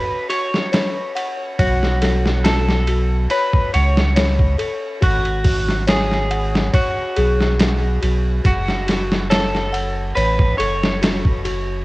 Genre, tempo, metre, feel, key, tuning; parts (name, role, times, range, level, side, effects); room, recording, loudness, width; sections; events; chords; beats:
trip hop; 70 BPM; 4/4; swing 53% on 16ths; F# minor; A4 = 440 Hz
clean electric guitar; melody; 0.0-11.4 s; F#4 to C#5; -23 LUFS; equal; cassette tape, tape echo
music box; arpeggios; 0.0-11.8 s; F#4 to F#5; -25 LUFS; left 3 dB; cassette tape, tape echo
trip hop sampler-style drum kit; drums; 0.3-11.7 s; hi-hat, kick drum, ride cymbal, snare drum; -20 LUFS; equal; cassette tape
soft dub sub bass; bass; 1.6-11.8 s; F#1 to C#2; -20 LUFS; equal
light reverb; home recording on cassette; -16 LUFS; side -20 dB against mid
0.0-11.8 A section
0.0 N.C.; 1.6 Bsus2; 5.0 G#m7; 8.4 F#m
0.73 | 1.59 2.45 3.30 4.16 | 5.02 5.88 6.73 7.59 | 8.45 9.30 10.16 11.02